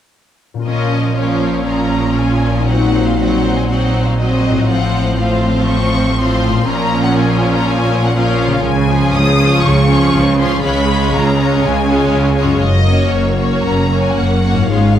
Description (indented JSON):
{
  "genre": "classical, dramatic, fast romantic movement for symphony orchestra",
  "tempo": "120 BPM",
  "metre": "4/4",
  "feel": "rubato",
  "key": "Bb minor, Db major from 8.6 s",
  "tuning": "A4 = 441 Hz",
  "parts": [
    { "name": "concert harp", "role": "arpeggios", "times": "0.5-15.0 s", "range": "Gb2 to C5", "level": "-20 LUFS", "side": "left 7 dB", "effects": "none" },
    { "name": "warm symphonic violin section", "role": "melody", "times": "0.7-15.0 s", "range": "Db5 to Eb6", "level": "-21 LUFS", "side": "left 2 dB", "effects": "none" },
    { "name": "clear symphonic violin section", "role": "second line", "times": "0.7-15.0 s", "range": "Eb4 to Db5", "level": "-22 LUFS", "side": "left 2 dB", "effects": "none" },
    { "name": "rich symphonic viola section", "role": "accompaniment", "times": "0.7-15.0 s", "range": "F3 to Db4", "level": "-17 LUFS", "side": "right 1 dB", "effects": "none" },
    { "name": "clear chamber double bass section", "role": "bass", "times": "0.7-15.0 s", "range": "Gb1 to Db2", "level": "-18 LUFS", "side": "right 3 dB", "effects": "none" },
    { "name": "rich symphonic cello section", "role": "bass", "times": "0.7-15.0 s", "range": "Gb2 to Db3", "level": "-18 LUFS", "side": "right 1 dB", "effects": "none" }
  ],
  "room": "moderate scoring stage reverb, RT60 1.4 s",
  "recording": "none",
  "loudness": "-12 LUFS",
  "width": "side -10 dB against mid",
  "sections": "0.7-15.0 A section",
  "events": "none",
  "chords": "0.7 Bbm; 2.7 Cm7b5/Bb; 4.7 F/A; 6.7 Bbm; 8.6 Db; 12.6 Gb",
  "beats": "| 0.66 1.16 1.67 2.17 | 2.68 3.19 3.69 4.19 | 4.68 5.19 5.68 6.18 | 6.68 7.18 7.67 8.16 | 8.65 9.14 9.63 10.13 | 10.63 11.13 11.62 12.12 | 12.62 13.12 13.64 14.16 | 14.70"
}